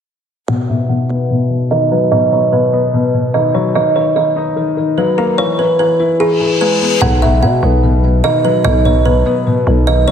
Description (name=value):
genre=hip hop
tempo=147 BPM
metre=4/4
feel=half-time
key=B major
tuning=A4 = 441 Hz
part: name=kalimba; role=melody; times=0.5-10.1 s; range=G#4 to F#5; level=-14 LUFS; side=right 2 dB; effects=low-pass filter, tape echo
part: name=dark baby grand piano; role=accompaniment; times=0.5-10.1 s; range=B2 to E4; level=-15 LUFS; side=left 3 dB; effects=low-pass filter
part: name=reverse cymbal and impact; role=sound effects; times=6.3-8.6 s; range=none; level=-21 LUFS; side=left 3 dB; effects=none
part: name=growling 808-style bass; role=bass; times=7.0-10.1 s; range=B1 to B2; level=-13 LUFS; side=equal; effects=none
room=wet lush hall reverb, RT60 1.7 s, small room ambience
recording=dreamy mix soaked in reverb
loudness=-11 LUFS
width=side -8 dB against mid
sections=0.5-7.0 A section; 7.0-10.1 B section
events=filter sweep 0.5-7.0; reverse cymbal 6.3-7.0; impact 7.0-8.6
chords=0.5 B; 3.8 D#m; 5.4 E; 7.0 B